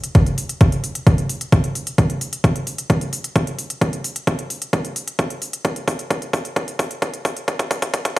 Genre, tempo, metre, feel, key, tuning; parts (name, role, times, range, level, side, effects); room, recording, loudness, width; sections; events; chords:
techno; 131 BPM; 4/4; straight
electronic hi-hat; drums; 0.0-8.2 s; -28 LUFS; equal
electronic kick drum; drums; 0.1-8.2 s; -17 LUFS; equal
little or no reverb; played on a big sound system in a bare room, large studio reverb, high-pass filter; -18 LUFS; side -18 dB against mid
0.0-8.2 A section
build-up 0.0-8.2; filter sweep 0.0-8.2; drum fill 2.0-8.2